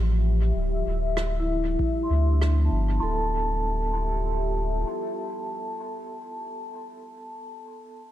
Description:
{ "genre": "ambient dub", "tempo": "97 BPM", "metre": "4/4", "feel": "swing 56% on 16ths", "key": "D dorian", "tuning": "A4 = 440 Hz", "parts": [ { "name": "deep dark ambient pad", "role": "sustained chords", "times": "0.0-6.3 s", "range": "F3 to E5", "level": "-32 LUFS", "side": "left 2 dB", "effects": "chorus, built-in reverb" }, { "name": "warm sub bass", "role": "bass", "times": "0.0-4.8 s", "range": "D1 to D2", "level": "-24 LUFS", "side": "equal", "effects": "tube saturation" }, { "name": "rim click", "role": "drums", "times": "1.2-2.6 s", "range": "none", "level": "-36 LUFS", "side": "right 2 dB", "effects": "dub echo" }, { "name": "vibraphone with medium hard mallets", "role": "arpeggios", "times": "1.4-8.0 s", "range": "B3 to C6", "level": "-30 LUFS", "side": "equal", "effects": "low-pass filter, dub echo" }, { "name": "electronic kick drum", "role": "drums", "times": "1.8-1.9 s", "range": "none", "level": "-28 LUFS", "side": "equal", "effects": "none" } ], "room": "light reverb, small room ambience", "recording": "none", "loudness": "-23 LUFS", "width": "side -13 dB against mid", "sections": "0.0-3.0 A section; 3.0-5.5 B section", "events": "filter sweep on vibraphone 0.0-3.0", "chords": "0.0 Dm11; 3.0 Dmadd9" }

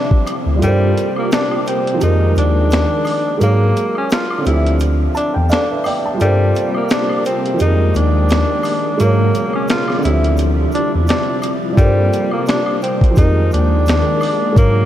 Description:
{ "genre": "lo-fi hip hop", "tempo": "86 BPM", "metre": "4/4", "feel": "swing 56% on 16ths", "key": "G minor", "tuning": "A4 = 439 Hz", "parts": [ { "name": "breathy tenor saxophone", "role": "melody", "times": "0.0-14.9 s", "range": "G3 to F4", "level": "-19 LUFS", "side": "left 1 dB", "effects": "low-pass filter, analog delay" }, { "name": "felt-muted upright piano", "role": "accompaniment", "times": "0.0-14.9 s", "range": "D3 to A5", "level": "-20 LUFS", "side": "right 2 dB", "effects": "cassette tape, low-pass filter" }, { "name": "string machine, full ensemble", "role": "sustained chords", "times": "0.0-14.9 s", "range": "Cb3 to G5", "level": "-22 LUFS", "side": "equal", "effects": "ensemble chorus, low-pass filter" }, { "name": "boom bap sampler-style drum kit", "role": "drums", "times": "0.1-14.8 s", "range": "finger snaps, hi-hat, kick drum, snare drum", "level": "-19 LUFS", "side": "equal", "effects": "none" }, { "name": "egg shaker and woodblock", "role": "percussion", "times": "0.3-14.8 s", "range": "none", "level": "-32 LUFS", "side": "left 2 dB", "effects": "none" }, { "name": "mellow tine electric piano", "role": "bass", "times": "0.5-14.9 s", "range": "D2 to Ab2", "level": "-15 LUFS", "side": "equal", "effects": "medium stereo tremolo" } ], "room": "moderate huge ambient reverb, RT60 6.4 s", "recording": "dreamy mix soaked in reverb", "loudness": "-13 LUFS", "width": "side -12 dB against mid", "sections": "0.6-14.9 A section", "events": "kick muted 0.6-11.8", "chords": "0.0 Dm11; 0.6 Gm11; 2.0 Fm11; 3.4 Ab9sus4; 4.5 Dm11; 6.2 Gm11; 7.6 Fm11; 9.0 Abm11; 10.0 Dm11; 11.8 Gm11; 13.2 Fm11" }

